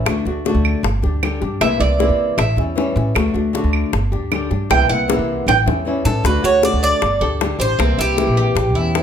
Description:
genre	latin, Cuban son and guajira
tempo	155 BPM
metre	4/4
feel	straight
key	D major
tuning	A4 = 440 Hz
part	flamenco guitar	accompaniment	0.0-9.0 s	C3 to G4	-21 LUFS	left 3 dB	none
part	upright bass	bass	0.0-9.0 s	G1 to A2	-20 LUFS	right 1 dB	none
part	bongos	percussion	0.1-9.0 s	none	-24 LUFS	left 6 dB	none
part	claves	percussion	0.1-5.7 s	none	-26 LUFS	right 8 dB	none
part	Cuban tres	arpeggios	1.6-9.0 s	C4 to G5	-20 LUFS	right 4 dB	none
part	Cuban tres	melody	6.1-9.0 s	G4 to D5	-19 LUFS	right 1 dB	none
room	light reverb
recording	none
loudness	-15 LUFS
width	side -8 dB against mid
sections	0.0-6.3 A section; 6.3-9.0 B section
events	Cuban tres solo 0.0-6.3; drum fill 5.1-6.3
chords	0.1 D; 0.8 G5; 1.6 C7; 2.4 A7; 3.2 D; 3.9 G5; 4.7 C7; 5.5 A7; 6.3 D; 7.0 Gsus2; 7.8 C7

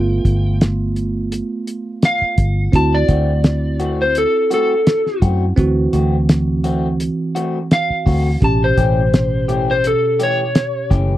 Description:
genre	straight-eighth soul blues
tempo	84 BPM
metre	4/4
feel	swing 54% on 16ths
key	D mixolydian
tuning	A4 = 440 Hz
part	electric slide guitar	melody	0.0-10.9 s	A4 to A5	-18 LUFS	left 1 dB	none
part	bell-like tine electric piano	accompaniment	0.0-11.2 s	B2 to G4	-22 LUFS	right 3 dB	phaser
part	vintage muted fingered electric bass	bass	0.0-11.2 s	F#1 to F#2	-18 LUFS	equal	none
part	cloth-damped thuddy drum kit	drums	0.2-11.1 s	hi-hat, kick drum, snare drum	-15 LUFS	equal	none
part	electric guitar through a small old amp	stabs	3.1-11.1 s	E3 to G4	-23 LUFS	left 4 dB	phaser
room	little or no reverb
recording	dry, close 1970s-style studio recording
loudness	-14 LUFS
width	side -14 dB against mid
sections	0.0-11.2 A section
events	electric slide guitar solo 0.0-11.2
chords	0.0 G7; 2.7 D7; 8.4 A7

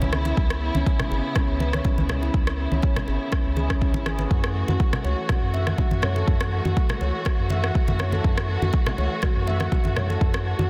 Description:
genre	afro house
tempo	122 BPM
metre	4/4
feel	swing 53% on 16ths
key	unclear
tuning	A4 = 439 Hz
part	warm chamber string section	sustained chords	0.0-10.7 s	C#3 to F#4	-34 LUFS	equal	sidechain pumping
part	round analog bass	bass	0.0-10.7 s	G#1 to F#2	-27 LUFS	equal	sidechain pumping
part	congas	percussion	0.0-10.7 s	none	-33 LUFS	equal	none
part	handpan	arpeggios	0.1-10.6 s	C#4 to F#5	-33 LUFS	equal	sidechain pumping, low-pass filter, dub echo
part	electronic rim click	drums	0.1-10.4 s	none	-34 LUFS	equal	overdrive
part	electronic kick drum	drums	0.4-10.3 s	none	-25 LUFS	equal	overdrive
room	light reverb, small room reverb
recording	dense, heavily limited modern master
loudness	-23 LUFS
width	mono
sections	0.0-10.7 A section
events	filter sweep on handpan 0.0-10.7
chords	0.0 C#m7; 4.3 F#m7

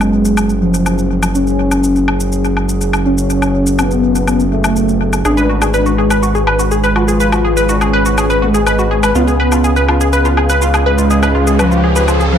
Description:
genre	melodic techno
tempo	123 BPM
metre	4/4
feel	straight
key	unclear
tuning	A4 = 440 Hz
part	fat analog lead	melody	0.0-12.4 s	E#3 to E#4	-16 LUFS	equal	wide subtle chorus, analog delay
part	dark analog pad	sustained chords	0.0-12.4 s	G#3 to E#5	-21 LUFS	equal	chorus, vintage 12-bit sampler grit
part	gritty driven synth bass	bass	0.0-12.4 s	F#1 to C#2	-15 LUFS	equal	none
part	shaker and woodblock	drums	0.0-12.3 s	none	-21 LUFS	left 2 dB	studio reverb, analog delay
part	wide unison pluck	arpeggios	5.3-12.4 s	E#4 to E#5	-15 LUFS	equal	analog delay
part	riser	sound effects	9.9-12.4 s	none	-22 LUFS	equal	none
room	moderate spring reverb, RT60 1.1 s, digital ambience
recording	echo-heavy mix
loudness	-11 LUFS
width	side -8 dB against mid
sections	0.0-12.4 A section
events	filter sweep on analog synth lead 0.0-12.4; riser 9.9-12.4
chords	0.0 F#madd9; 5.3 G#m7b5; 9.2 C#7

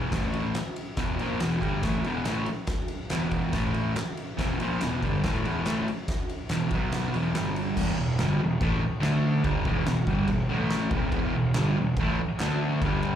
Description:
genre	garage rock duo or trio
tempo	142 BPM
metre	4/4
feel	straight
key	E minor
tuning	A4 = 442 Hz
part	fuzz guitar	riff	0.0-13.2 s	E2 to D4	-26 LUFS	equal	distortion
part	fuzz picked electric bass	bass	0.0-13.2 s	E1 to D2	-33 LUFS	equal	overdrive
part	oversized low-tuned drum kit	drums	0.1-12.9 s	crash cymbal, kick drum, ride cymbal, snare drum	-30 LUFS	equal	none
part	group handclap	percussion	0.6-7.5, 11.6-13.1 s	none	-41 LUFS	right 1 dB	none
room	studio reverb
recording	live gig heard through the venue's PA, club reverb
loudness	-24 LUFS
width	side -10 dB against mid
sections	0.0-7.8 A section; 7.8-13.2 B section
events	none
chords	0.1 A5; 0.6 Em; 3.5 A5; 4.0 Em; 6.7 B5; 7.1 E5; 7.3 G5; 7.8 Em; 9.0 D5; 9.5 Em; 10.5 A5; 10.9 Em; 12.4 D5

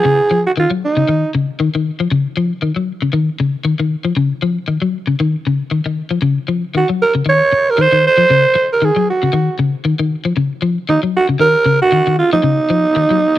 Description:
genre	afrobeat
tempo	116 BPM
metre	4/4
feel	swing 56% on 16ths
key	Eb dorian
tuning	A4 = 439 Hz
part	breathy alto saxophone	melody	0.0-1.3, 6.8-13.4 s	Eb4 to Db5	-12 LUFS	right 3 dB	none
part	electric guitar at the edge of break-up	arpeggios	0.0-13.3 s	Db3 to Gb3	-16 LUFS	left 4 dB	analog chorus
room	studio reverb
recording	dry, close 1970s-style studio recording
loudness	-13 LUFS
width	side -13 dB against mid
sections	0.0-13.4 A section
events	none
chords	0.0 Ebm9

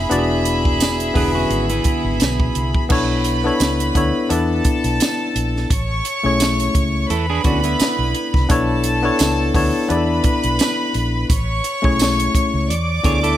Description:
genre	lush 1970s-style soul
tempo	86 BPM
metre	4/4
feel	swing 54% on 16ths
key	unclear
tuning	A4 = 440 Hz
part	warm studio violin section	second line	0.0-13.4 s	G#4 to D6	-22 LUFS	equal	tape echo
part	tine electric piano	accompaniment	0.0-13.4 s	D3 to E5	-20 LUFS	left 3 dB	overdrive
part	vintage muted fingered electric bass	bass	0.0-13.3 s	E1 to E2	-22 LUFS	equal	none
part	compact cocktail drum kit	drums	0.1-13.4 s	crash cymbal, hi-hat, kick drum, snare drum	-20 LUFS	right 1 dB	none
part	tambourine	percussion	0.8-12.2 s	none	-28 LUFS	right 5 dB	none
part	electric guitar at the edge of break-up	riff	1.2-2.7, 7.1-8.5, 13.1-13.4 s	B3 to C#5	-24 LUFS	right 8 dB	none
room	light reverb, studio ambience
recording	none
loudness	-16 LUFS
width	side -12 dB against mid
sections	0.0-2.9 A section; 2.9-13.4 B section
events	none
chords	0.0 E7; 2.9 Bm11; 4.3 E7sus4; 5.7 Amaj7; 7.1 E7sus4; 8.5 Bm11; 9.9 E7sus4; 11.3 Amaj7; 12.7 E7sus4

